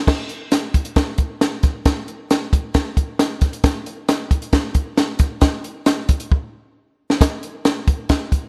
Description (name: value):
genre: soul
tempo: 135 BPM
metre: 4/4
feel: straight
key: none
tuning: none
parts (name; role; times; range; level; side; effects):
- compact cocktail drum kit; drums; 0.1-8.4 s; crash cymbal, hi-hat, kick drum, snare drum; -19 LUFS; equal; none
room: light reverb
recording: none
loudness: -20 LUFS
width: mono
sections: 0.1-7.2 A section; 7.2-8.5 B section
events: drum fill 6.3-7.2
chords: none